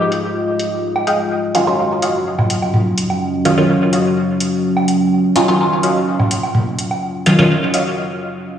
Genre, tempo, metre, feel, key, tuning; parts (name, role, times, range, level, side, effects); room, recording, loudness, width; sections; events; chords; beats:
dub techno; 126 BPM; 4/4; straight; A4 = 440 Hz
deep dark ambient pad; sustained chords; 0.0-7.9 s; Gb3 to Eb5; -18 LUFS; equal; chorus, built-in reverb
electronic hi-hat; drums; 0.1-7.8 s; -24 LUFS; left 1 dB; low-pass filter on hats, low-pass filter on room
electronic woodblock and toms; percussion; 1.0-7.0 s; -20 LUFS; right 1 dB; dub echo
wavetable chord stab; riff; 1.1-7.8 s; Gb4 to G5; -23 LUFS; equal; dub echo
filtered dub chord stab; stabs; 1.5-7.6 s; Eb3 to F4; -17 LUFS; equal; phaser, dub echo
wet spring reverb, RT60 2.2 s; played on a big sound system in a bare room, stone room reverb, small room ambience; -14 LUFS; side -9 dB against mid
0.0-8.6 A section
filter sweep on ambient pad 0.0-8.6; break 8.0-8.6
0.0 Fm9; 1.3 Ebm9
0.36 0.83 | 1.31 1.79 2.26 2.74 | 3.21 3.69 4.17 4.64 | 5.12 5.59 6.07 6.55 | 7.02 7.50